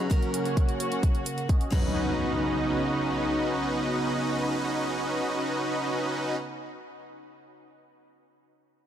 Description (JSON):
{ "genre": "EDM, festival progressive house", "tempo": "130 BPM", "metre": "4/4", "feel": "straight", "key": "B major", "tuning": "A4 = 438 Hz", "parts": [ { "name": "picked steel-string acoustic guitar", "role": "accompaniment", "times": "0.0-6.4 s", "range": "F#3 to B4", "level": "-34 LUFS", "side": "left 2 dB", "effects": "sidechain pumping, tape echo" }, { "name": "dark studio string section", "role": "sustained chords", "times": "0.0-6.4 s", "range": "C#3 to F#4", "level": "-32 LUFS", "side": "right 1 dB", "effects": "sidechain pumping" }, { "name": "supersaw chords", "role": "riff", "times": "0.0-6.4 s", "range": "C#4 to D#5", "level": "-29 LUFS", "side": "right 1 dB", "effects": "sidechain pumping, low-pass filter, tape echo" }, { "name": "electronic kick drum", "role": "drums", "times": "0.1-1.8 s", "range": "none", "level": "-24 LUFS", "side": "equal", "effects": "none" }, { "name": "house drum kit", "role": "drums", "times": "0.1-1.8 s", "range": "crash cymbal, hi-hat", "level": "-39 LUFS", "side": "right 3 dB", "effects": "none" }, { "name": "impact", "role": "sound effects", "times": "1.7-6.4 s", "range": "none", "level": "-36 LUFS", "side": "equal", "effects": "none" } ], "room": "moderate huge ambient reverb, RT60 4.2 s", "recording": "none", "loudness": "-25 LUFS", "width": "side -10 dB against mid", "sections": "0.0-2.0 A section; 2.0-5.6 B section", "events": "none", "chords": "0.1 F#; 1.7 Badd9" }